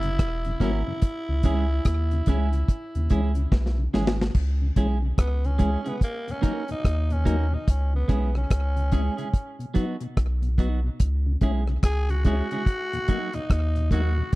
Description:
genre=roots reggae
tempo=72 BPM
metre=4/4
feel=swing 62% on 16ths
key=C# dorian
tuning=A4 = 440 Hz
part: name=raspy tenor saxophone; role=melody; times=0.0-14.4 s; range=A#3 to G#4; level=-32 LUFS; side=equal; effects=tape echo
part: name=mellow tonewheel organ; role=accompaniment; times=0.0-14.2 s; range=D#2 to E4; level=-32 LUFS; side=left 3 dB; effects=slow rotary speaker, slapback echo
part: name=warm sub bass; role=bass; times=0.0-14.2 s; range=E1 to D#2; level=-24 LUFS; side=equal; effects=none
part: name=deep reggae drum kit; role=drums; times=0.0-14.4 s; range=crash cymbal, hi-hat, kick drum, rim click, snare drum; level=-22 LUFS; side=equal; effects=none
part: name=clean electric guitar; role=accompaniment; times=0.6-14.1 s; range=F#3 to A#4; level=-31 LUFS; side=right 4 dB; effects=tape echo
room=studio reverb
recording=dry, close 1970s-style studio recording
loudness=-22 LUFS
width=side -19 dB against mid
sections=0.0-4.3 A section; 4.3-14.4 B section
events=drum fill 3.5-4.3; tenor saxophone solo 4.3-14.4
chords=0.0 F#; 1.0 C#m; 6.0 D#m; 7.7 C#m; 9.3 B; 11.0 C#m; 12.7 D#m

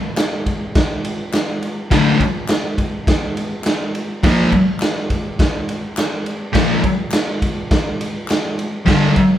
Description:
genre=garage rock duo or trio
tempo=104 BPM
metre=4/4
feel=straight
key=D minor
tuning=A4 = 438 Hz
part: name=raw garage drum kit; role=drums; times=0.2-9.3 s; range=crash cymbal, kick drum, ride cymbal, snare drum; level=-18 LUFS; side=equal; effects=none
part: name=group handclap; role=percussion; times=0.2-8.4 s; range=none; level=-33 LUFS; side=left 3 dB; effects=none
part: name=thick fuzz guitar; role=riff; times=1.9-9.1 s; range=D2 to Bb3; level=-15 LUFS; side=left 1 dB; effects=distortion
room=moderate large studio reverb, RT60 1.2 s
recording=band playing live in one room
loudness=-16 LUFS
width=side -11 dB against mid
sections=0.0-9.4 A section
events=none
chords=0.0 D5; 4.2 Bb5; 8.9 G5

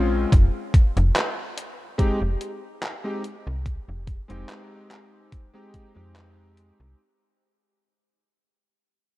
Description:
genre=vaporwave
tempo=72 BPM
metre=4/4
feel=swing 54% on 16ths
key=unclear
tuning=A4 = 440 Hz
part: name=bright electric grand piano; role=accompaniment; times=0.0-7.0 s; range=Ab3 to G4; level=-30 LUFS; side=left 2 dB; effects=analog chorus, analog delay
part: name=slap-like FM bass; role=bass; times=0.0-6.9 s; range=F1 to F2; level=-24 LUFS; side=equal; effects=none
part: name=detuned 8-bit digital drum machine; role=drums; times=0.3-6.8 s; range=handclaps, hi-hat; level=-29 LUFS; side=equal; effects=overdrive, gated reverb
part: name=electronic kick drum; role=drums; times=0.3-5.9 s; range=none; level=-18 LUFS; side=equal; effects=overdrive
room=light reverb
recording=none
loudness=-21 LUFS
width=side -18 dB against mid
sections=0.0-7.0 A section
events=fade-out 0.0-7.0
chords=0.3 Fm7

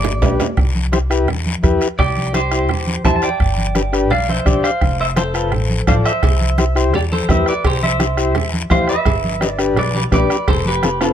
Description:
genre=latin, cumbia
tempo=170 BPM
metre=4/4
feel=straight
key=C major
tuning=A4 = 436 Hz
part: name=clean electric guitar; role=melody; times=0.0-11.1 s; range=F4 to A5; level=-20 LUFS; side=right 1 dB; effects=spring reverb
part: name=upright bass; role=bass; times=0.0-11.1 s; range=F1 to E2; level=-20 LUFS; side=equal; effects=none
part: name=congas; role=percussion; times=0.0-11.0 s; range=none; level=-22 LUFS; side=right 2 dB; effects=none
part: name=timbales and cowbell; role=percussion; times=0.0-0.5, 6.2-11.1 s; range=none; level=-25 LUFS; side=right 4 dB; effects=none
part: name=combo organ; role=accompaniment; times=0.2-11.1 s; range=C4 to D5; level=-20 LUFS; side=left 4 dB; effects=none
part: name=bombo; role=percussion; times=0.2-11.1 s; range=none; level=-20 LUFS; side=right 1 dB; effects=none
part: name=guiro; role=percussion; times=0.2-11.1 s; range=none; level=-28 LUFS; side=left 6 dB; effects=none
room=little or no reverb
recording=close, detailed microphones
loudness=-14 LUFS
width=side -9 dB against mid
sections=0.6-11.1 A section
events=drum fill 0.0-0.6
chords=0.0 G; 0.6 C; 3.4 G; 4.8 F; 6.2 C; 9.1 G; 10.5 F

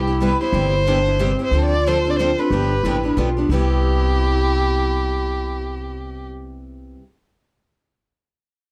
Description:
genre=acoustic string swing (jazz manouche)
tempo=182 BPM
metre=3/4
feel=swing 59% on 8ths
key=C major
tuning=A4 = 440 Hz
part: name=warm violin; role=melody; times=0.0-6.2 s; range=G4 to D5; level=-25 LUFS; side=equal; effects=none
part: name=breathy clarinet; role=second line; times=0.0-6.3 s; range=C4 to G4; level=-28 LUFS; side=equal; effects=none
part: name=upright bass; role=bass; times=0.0-6.9 s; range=G1 to D2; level=-24 LUFS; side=equal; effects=none
part: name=picked steel-string acoustic guitar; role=accompaniment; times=0.1-7.0 s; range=C3 to A4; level=-29 LUFS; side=equal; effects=none
part: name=picked steel-string acoustic guitar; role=accompaniment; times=0.2-7.0 s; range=C3 to A4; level=-32 LUFS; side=equal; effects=none
room=light reverb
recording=dark, warm production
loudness=-19 LUFS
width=mono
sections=0.0-1.5 A section; 1.5-3.5 B section; 3.5-5.5 C section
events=none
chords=0.0 Cmaj7; 1.5 Dm7; 2.5 G9; 3.5 Cmaj7

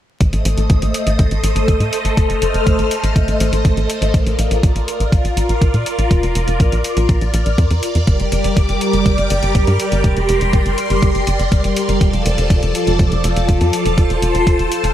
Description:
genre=italo disco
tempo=122 BPM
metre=4/4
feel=straight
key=unclear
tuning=A4 = 440 Hz
part: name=phased string machine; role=sustained chords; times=0.3-14.9 s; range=F3 to F6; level=-18 LUFS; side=equal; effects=ensemble chorus, phaser, shimmer reverb
part: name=tight sequencer bass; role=bass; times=0.2-14.9 s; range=F1 to Bb2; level=-17 LUFS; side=equal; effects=none
part: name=electronic hi-hat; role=drums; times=0.2-14.9 s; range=none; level=-28 LUFS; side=left 1 dB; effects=none
part: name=electronic kick drum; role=drums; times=0.2-14.6 s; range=none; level=-15 LUFS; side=equal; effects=none
room=light reverb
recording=vinyl crackle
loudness=-13 LUFS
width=side -11 dB against mid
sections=0.2-14.9 A section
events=none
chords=0.2 Adim; 4.1 Bb; 8.1 Gm; 12.0 Dm/F

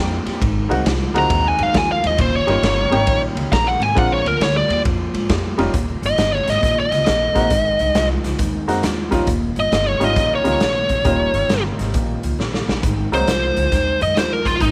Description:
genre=electric blues shuffle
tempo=135 BPM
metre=4/4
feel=swing 65% on 8ths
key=Eb mixolydian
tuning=A4 = 440 Hz
part: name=clear upright piano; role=accompaniment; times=0.0-13.3 s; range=Gb3 to G4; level=-25 LUFS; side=equal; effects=none
part: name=electric guitar through a small old amp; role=riff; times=0.0-14.7 s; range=Eb2 to G3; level=-29 LUFS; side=equal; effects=none
part: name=upright bass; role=bass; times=0.0-14.7 s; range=Eb1 to Ab2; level=-25 LUFS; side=equal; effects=none
part: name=raw garage drum kit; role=drums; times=0.3-14.7 s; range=hi-hat, kick drum, ride cymbal, snare drum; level=-24 LUFS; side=equal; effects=none
part: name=biting lead guitar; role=melody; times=1.2-14.7 s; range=Eb4 to Bb5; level=-21 LUFS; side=equal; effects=overdrive
room=small room ambience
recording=none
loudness=-18 LUFS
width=mono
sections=0.0-5.7 A section; 5.7-14.7 B section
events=lead electric guitar solo 0.0-5.7; drum fill 12.4-12.8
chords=0.4 Ab9; 2.2 Eb9; 4.0 Bb9; 5.7 Eb; 7.5 Ab9; 9.3 Eb9; 12.8 Ab7

